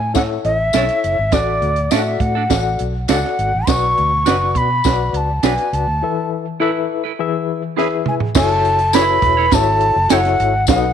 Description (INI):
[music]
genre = uptempo 1960s-style soul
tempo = 102 BPM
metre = 4/4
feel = straight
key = unclear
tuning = A4 = 438 Hz
[part]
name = bansuri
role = melody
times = 0.0-10.9 s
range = D5 to C#6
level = -17 LUFS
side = equal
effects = none
[part]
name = vintage muted fingered electric bass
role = bass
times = 0.0-10.9 s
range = E1 to B2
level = -21 LUFS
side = equal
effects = none
[part]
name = barky reed electric piano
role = accompaniment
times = 0.1-10.9 s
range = A2 to F#5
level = -21 LUFS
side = left 11 dB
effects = overdrive, fast tremolo
[part]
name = tambourine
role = percussion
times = 0.1-10.8 s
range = none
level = -28 LUFS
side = left 14 dB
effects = none
[part]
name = compact cocktail drum kit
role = drums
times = 0.2-10.8 s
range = crash cymbal, hi-hat, kick drum, snare drum, toms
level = -19 LUFS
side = right 6 dB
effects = none
[part]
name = clean electric guitar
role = stabs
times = 0.7-10.2 s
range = C#4 to C#5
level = -25 LUFS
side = right 14 dB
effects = slapback echo
[part]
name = vibraphone with soft mallets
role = second line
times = 8.1-10.9 s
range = F#4 to B4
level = -27 LUFS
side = equal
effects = none
[sound]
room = light reverb, small room ambience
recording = 1960s-style stereo with parts hard left and right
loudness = -14 LUFS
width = side -8 dB against mid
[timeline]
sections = 0.0-8.4 A section; 8.4-10.9 B section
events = break 6.0-8.4; drum fill 7.8-8.4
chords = 0.0 A; 1.3 D/A; 3.7 Bm; 6.0 Esus4; 7.2 E; 8.4 F#m7